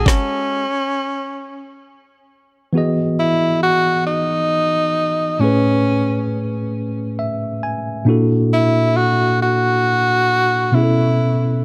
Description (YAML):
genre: R&B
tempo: 45 BPM (dotted quarters)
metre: 6/8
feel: straight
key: unclear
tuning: A4 = 440 Hz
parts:
  - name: breathy tenor saxophone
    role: melody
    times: 0.0-11.6 s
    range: C#4 to F#4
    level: -20 LUFS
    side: equal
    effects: plate reverb, tape echo
  - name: clean electric guitar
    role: second line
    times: 0.0-0.7 s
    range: G#3 to A4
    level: -33 LUFS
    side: equal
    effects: spring reverb, plate reverb
  - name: tine electric piano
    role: accompaniment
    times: 0.0-11.6 s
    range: A2 to G#5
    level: -20 LUFS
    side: equal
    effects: overdrive
room: moderate studio reverb, RT60 0.6 s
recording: none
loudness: -18 LUFS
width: mono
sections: 0.0-2.7 A section; 2.7-11.6 B section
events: stop 0.1-2.7; tine electric piano fill 6.7-8.1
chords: 0.1 N.C.; 2.7 Emaj9; 5.4 Amaj9; 8.1 F#7alt/A#; 10.7 B7sus4